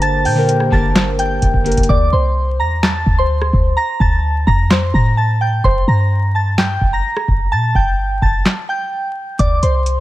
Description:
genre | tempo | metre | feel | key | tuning
hip hop, trap | 128 BPM | 4/4 | half-time | unclear | A4 = 440 Hz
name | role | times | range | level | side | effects
soft synth bell | melody | 0.0-10.0 s | C5 to Bb6 | -19 LUFS | equal | chorus, tape echo
glassy digital keys | accompaniment | 0.0-1.9 s | D3 to Bb4 | -20 LUFS | left 1 dB | chorus
mellow brass ensemble | sustained chords | 0.0-1.9 s | D3 to C5 | -22 LUFS | right 2 dB | stereo widening
clean 808-style bass | bass | 0.0-10.0 s | G1 to Bb2 | -16 LUFS | equal | none
booming analog drum machine | drums | 0.0-10.0 s | handclaps, hi-hat, kick drum, rim click, snare drum | -16 LUFS | equal | none
room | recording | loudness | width
little or no reverb | vinyl crackle | -13 LUFS | side -16 dB against mid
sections
0.0-1.9 A section; 1.9-10.0 B section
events
hi-hats muted 1.9-9.4; break 8.5-9.4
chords
0.0 Gm; 1.9 Dm; 5.6 Gm; 9.4 N.C.

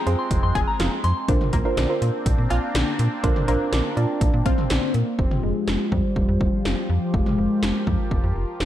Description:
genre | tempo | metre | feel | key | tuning
synth-pop | 123 BPM | 4/4 | straight | F minor | A4 = 440 Hz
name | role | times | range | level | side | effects
warm velvety synth lead | melody | 0.0-0.3, 4.5-8.1 s | F3 to Ab4 | -25 LUFS | left 2 dB | chorus
soft synth bell | second line | 0.0-1.1 s | Bb5 to C6 | -29 LUFS | left 2 dB | chorus, analog delay
sweeping resonant pad | sustained chords | 0.0-8.7 s | F3 to G5 | -30 LUFS | equal | chorus, phaser
soft round pluck | accompaniment | 0.1-4.5 s | C4 to D5 | -27 LUFS | right 3 dB | chorus
slap-like FM bass | bass | 0.1-8.7 s | F1 to Bb2 | -23 LUFS | equal | none
80s electronic pad drums | drums | 0.1-8.7 s | cowbell, hi-hat, kick drum, snare drum, toms | -24 LUFS | equal | gated reverb on snare and toms
analog pluck | arpeggios | 0.6-4.9 s | D3 to Ab4 | -31 LUFS | left 1 dB | chorus, analog delay
room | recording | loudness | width
light reverb, digital ambience | dark, warm production | -19 LUFS | side -12 dB against mid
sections
0.0-5.2 A section; 5.2-8.7 B section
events
none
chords
0.0 Fm; 1.3 Bbadd9; 5.2 Fmadd9

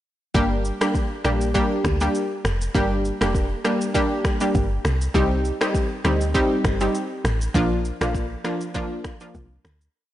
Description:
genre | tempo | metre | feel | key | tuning
afrobeats | 100 BPM | 4/4 | swing 55% on 16ths | G minor | A4 = 440 Hz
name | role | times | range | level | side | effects
analog pluck | accompaniment | 0.3-9.4 s | F3 to G4 | -23 LUFS | equal | chorus
deep log drum bass | bass | 0.3-9.9 s | F1 to D2 | -24 LUFS | equal | none
afro-pop drum kit | drums | 0.3-9.9 s | finger snaps, kick drum, rim click, shaker | -26 LUFS | equal | soft clipping on snare
room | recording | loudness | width
light reverb | blown-out, overdriven recording, overdrive, nothing above 10.9 kHz | -20 LUFS | side -13 dB against mid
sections
0.3-9.9 verse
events
fade-out 7.5-9.9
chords
0.3 Gm; 5.1 Cm; 7.5 Bb

